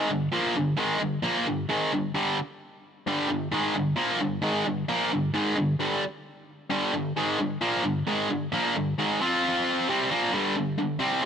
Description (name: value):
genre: rock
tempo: 132 BPM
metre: 4/4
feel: straight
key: G minor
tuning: A4 = 440 Hz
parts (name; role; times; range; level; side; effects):
- overdriven electric guitar; solo; 0.0-11.3 s; G2 to F4; -24 LUFS; equal; none
room: light reverb, digital ambience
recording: none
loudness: -24 LUFS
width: side -7 dB against mid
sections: 0.0-10.3 A section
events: none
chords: 0.0 Gm; 9.2 F5; 9.9 Gm; 10.3 G5